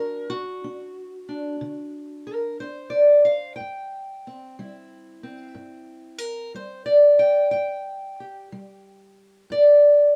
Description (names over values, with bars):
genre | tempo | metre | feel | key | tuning
acoustic country blues, solo or duo | 61 BPM (dotted quarters) | 12/8 | straight | unclear | A4 = 440 Hz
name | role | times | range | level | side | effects
fingerpicked steel-string acoustic guitar | solo | 0.0-10.2 s | G2 to G5 | -22 LUFS | equal | none
room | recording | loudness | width
little or no reverb | close, detailed microphones | -19 LUFS | mono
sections
0.0-10.2 A section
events
none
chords
0.0 D; 3.6 C; 7.5 N.C.